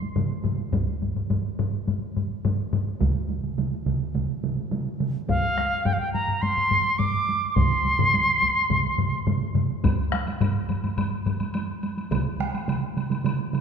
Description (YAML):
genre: japanese traditional, taiko drum ensemble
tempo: 106 BPM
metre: 4/4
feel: straight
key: C suspended pentatonic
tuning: A4 = 440 Hz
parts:
  - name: solo taiko drums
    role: percussion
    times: 0.0-13.6 s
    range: none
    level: -31 LUFS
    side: right 1 dB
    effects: none
  - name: solo taiko drums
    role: percussion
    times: 0.2-11.4 s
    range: none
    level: -27 LUFS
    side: left 3 dB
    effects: none
  - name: solo taiko drums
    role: percussion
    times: 0.2-13.6 s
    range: none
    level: -28 LUFS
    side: right 5 dB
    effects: none
  - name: taiko ensemble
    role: percussion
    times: 0.7-12.2 s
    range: none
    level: -29 LUFS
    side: right 1 dB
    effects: none
  - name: piccolo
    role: melody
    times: 5.3-9.3 s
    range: F5 to D6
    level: -22 LUFS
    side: equal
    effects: none
  - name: woodblock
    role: percussion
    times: 9.8-13.6 s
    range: none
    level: -38 LUFS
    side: left 2 dB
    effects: none
room: wet concert hall reverb, RT60 2.1 s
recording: minimal, uncompressed stereo recording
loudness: -22 LUFS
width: side -6 dB against mid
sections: 0.0-9.8 A section; 9.8-13.6 B section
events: none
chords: none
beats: 0.16 | 0.73 1.30 1.87 2.44 | 3.01 3.58 4.15 4.72 | 5.29 5.86 6.43 7.00 | 7.57 8.13 8.70 9.27 | 9.84 10.41 10.98 11.54 | 12.11 12.68 13.25